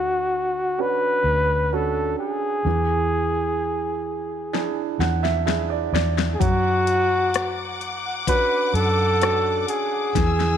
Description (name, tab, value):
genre	pop ballad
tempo	64 BPM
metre	4/4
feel	straight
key	unclear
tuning	A4 = 441 Hz
part	mellow flugelhorn	melody	0.0-10.6 s	F#4 to B4	-22 LUFS	left 1 dB	slapback echo
part	warm baby grand piano	accompaniment	0.0-10.6 s	D3 to F#5	-28 LUFS	right 12 dB	none
part	vintage muted fingered electric bass	bass	0.0-10.6 s	D2 to F#2	-25 LUFS	equal	none
part	smooth R&B drum kit	drums	4.5-10.6 s	hi-hat, kick drum, rim click, snare drum	-26 LUFS	left 5 dB	none
part	warm studio string section	sustained chords	6.4-10.6 s	F#5 to E6	-30 LUFS	left 4 dB	none
room	light reverb, small room ambience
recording	1960s-style stereo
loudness	-20 LUFS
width	side -9 dB against mid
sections	0.0-10.6 A section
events	drum fill 4.5-6.4, 10.2-10.6; grand piano fill 4.5-6.4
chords	0.0 Dmaj7; 2.7 E7; 6.4 Dmaj7/F#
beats	0.78 1.72 | 2.65 3.59 4.53 5.47 | 6.40 7.34 8.28 9.22 | 10.15